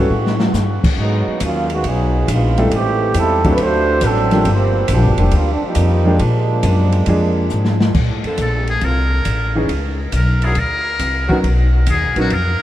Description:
jazz, big band swing; 138 BPM; 4/4; swing 68% on 8ths; A4 = 440 Hz
mellow trombone section; second line; 0.0-7.5 s; Eb3 to C5; -19 LUFS; right 2 dB
clear baby grand piano; accompaniment; 0.0-12.3 s; E3 to Bb4; -22 LUFS; equal
upright bass; bass; 0.0-12.6 s; F1 to Bb2; -17 LUFS; equal
open jazz drum kit; drums; 0.3-12.4 s; crash cymbal, hi-hat, kick drum, ride cymbal, snare drum; -23 LUFS; equal
bright saxophone section; sustained chords; 8.3-11.4 s; D3 to Bb4; -28 LUFS; equal
trumpet with metal mute; melody; 8.4-12.6 s; F#4 to Bb4; -21 LUFS; left 1 dB
moderate huge ambient reverb, RT60 7.6 s; in a vast, echoing space; -13 LUFS; side -13 dB against mid
0.0-7.9 A section; 7.9-12.6 B section
trombone section solo 0.0-7.9; drum fill 0.1-0.5, 7.5-7.9; muted trumpet solo 7.9-12.6
0.1 A6; 1.0 Abm7; 2.7 Am7; 3.6 D7; 4.5 Gm7; 6.2 Bb7; 7.9 Bbmaj9; 9.7 Db7(no3); 10.6 Gb; 11.4 Bmaj7

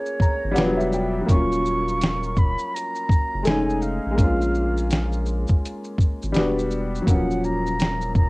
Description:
lo-fi hip hop; 83 BPM; 4/4; swing 64% on 16ths; Eb minor; A4 = 440 Hz
concert flute; melody; 0.0-8.3 s; Db5 to Db6; -28 LUFS; right 1 dB; low-pass filter, cassette tape, analog delay
warm upright piano; accompaniment; 0.0-8.3 s; F3 to Bb5; -24 LUFS; left 1 dB; cassette tape, low-pass filter
dusty soul sampler-style drum kit; drums; 0.1-8.3 s; hi-hat, kick drum, shaker, snare drum; -20 LUFS; equal; cassette tape
saturated sub bass; bass; 0.4-8.3 s; Eb1 to Bb1; -27 LUFS; equal
light reverb; home recording on cassette; -20 LUFS; side -23 dB against mid
0.0-8.3 A section
0.0 Bbm7; 0.6 Em9; 1.3 Ebm9; 3.5 F7alt; 4.2 Bbm7; 6.3 Em9; 7.1 Ebm9

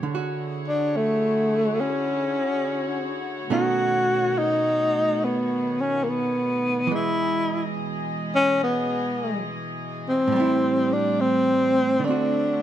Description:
jazz ballad; 70 BPM; 4/4; swing 67% on 8ths; E major; A4 = 438 Hz
archtop guitar, miked and amplified; accompaniment; 0.0-12.6 s; A2 to F#4; -29 LUFS; right 6 dB
warm studio string section; sustained chords; 0.0-12.6 s; B2 to D#5; -31 LUFS; left 1 dB
breathy tenor saxophone; melody; 0.7-12.6 s; A3 to F#4; -21 LUFS; left 1 dB
moderate echo chamber reverb, RT60 1.5 s; dark, warm production; -21 LUFS; side -11 dB against mid
0.0-12.6 A section
0.1 Dmaj9#11; 3.5 B9; 6.9 Emaj7; 10.3 Am7; 12.0 D7

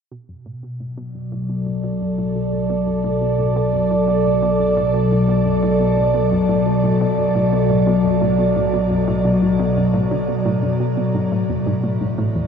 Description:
ambient, sequencer-driven space music; 87 BPM; 4/4; straight; B minor; A4 = 440 Hz
evolving wavetable pad; sustained chords; 0.5-12.5 s; A2 to D5; -16 LUFS; equal; chorus, built-in reverb, shimmer reverb
analog pluck; riff; 0.1-12.4 s; E2 to D3; -28 LUFS; right 1 dB; chorus, tape echo, shimmer reverb
analog drone; bass; 1.7-12.5 s; A1 to B1; -34 LUFS; right 1 dB; chorus
wet huge ambient reverb, RT60 9.7 s; -16 LUFS; side -6 dB against mid
0.1-12.5 A section
fade-in on synth arpeggio sound 0.1-12.5; fade-in on synth drone 0.1-12.5; filter sweep on ambient pad 0.1-12.5
0.1 Bm7; 11.1 Amaj7(no3)

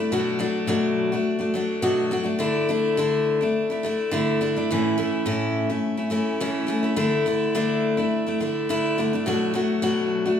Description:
rock; 105 BPM; 4/4; straight; D major; A4 = 440 Hz
picked steel-string acoustic guitar; solo; 0.0-10.4 s; A2 to F#4; -21 LUFS; left 1 dB
moderate large studio reverb, RT60 1.3 s; band playing live in one room; -21 LUFS; side -8 dB against mid
0.0-10.4 A section
0.1 Bm7; 2.4 Dsus2; 4.7 A; 7.0 Dsus2; 9.3 Bm7

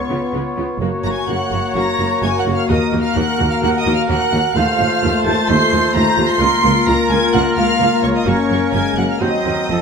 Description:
classical, dramatic, fast romantic movement for symphony orchestra; 128 BPM; 4/4; rubato; Bb minor; A4 = 440 Hz
warm symphonic violin section; melody; 0.0-9.8 s; Db6 to C7; -24 LUFS; left 2 dB
bright clarinet; second line; 0.0-9.8 s; C4 to Gb4; -27 LUFS; left 3 dB
bright large flute ensemble; second line; 0.0-9.8 s; Db5 to C6; -22 LUFS; right 4 dB
warm oboe; second line; 0.0-9.8 s; A4 to Db5; -28 LUFS; right 1 dB
warm symphonic violin section; second line; 0.0-9.8 s; Db5 to C6; -25 LUFS; equal
dark bassoon; accompaniment; 0.0-9.8 s; F3 to Cb4; -26 LUFS; equal
dark French horn section; sustained chords; 0.0-9.8 s; F3 to Gb4; -22 LUFS; left 7 dB
mellow trumpet section; stabs; 0.0-9.8 s; A4 to Db5; -24 LUFS; equal
rich symphonic viola section; accompaniment; 0.1-9.8 s; A3 to Gb4; -24 LUFS; right 1 dB
rich studio double bass section; bass; 0.1-9.8 s; F1 to Eb2; -24 LUFS; right 3 dB
rich symphonic cello section; bass; 0.1-9.8 s; Db2 to Db3; -23 LUFS; right 3 dB
moderate scoring stage reverb, RT60 1.6 s; close, detailed microphones; -14 LUFS; side -6 dB against mid
0.0-9.8 A section
0.0 Db7; 0.8 Gb; 2.7 Ebm; 4.6 F7/Eb; 6.4 Bbm/Db; 8.3 Gb; 9.2 Cdim

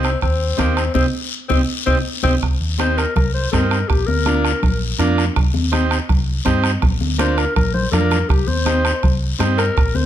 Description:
latin, cumbia; 163 BPM; 4/4; straight; C minor; A4 = 441 Hz
breathy tenor saxophone; second line; 0.0-2.3 s; Bb3 to C4; -23 LUFS; left 5 dB
combo organ; accompaniment; 0.0-9.7 s; Bb3 to G4; -22 LUFS; right 5 dB
hollow-body short-scale fingered electric bass; bass; 0.0-10.1 s; Bb1 to G2; -20 LUFS; equal
bombo; percussion; 0.0-10.0 s; -20 LUFS; right 2 dB
guiro; percussion; 0.0-10.1 s; -29 LUFS; left 7 dB
congas; percussion; 0.6-10.1 s; -24 LUFS; left 4 dB
growling clarinet; melody; 2.8-4.8, 7.2-10.1 s; G4 to C5; -22 LUFS; left 4 dB; plate reverb
moderate large studio reverb, RT60 0.9 s; -15 LUFS; side -11 dB against mid
0.0-2.4 A section; 2.4-10.1 B section
tenor saxophone solo 0.0-2.4; band accent 1.0-2.4; clarinet solo 2.4-10.1; drum fill 7.2-8.3
0.0 Cm; 3.9 Bb; 5.4 Cm; 6.8 Bb; 8.3 Cm

